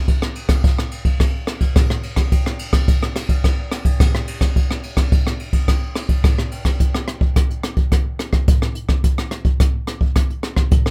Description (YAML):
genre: samba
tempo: 107 BPM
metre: 4/4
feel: straight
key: none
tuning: none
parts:
  - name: jazz brush drum kit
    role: drums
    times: 0.1-10.9 s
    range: hi-hat, kick drum, ride cymbal, rim click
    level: -18 LUFS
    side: equal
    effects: none
room: light reverb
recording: rough home demo mix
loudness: -19 LUFS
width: mono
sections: 0.0-6.8 A section; 6.8-10.9 B section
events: none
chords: none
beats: | 0.08 0.64 1.20 1.76 | 2.32 2.88 3.44 4.00 | 4.56 5.12 5.68 6.24 | 6.80 7.36 7.92 8.48 | 9.04 9.60 10.16 10.72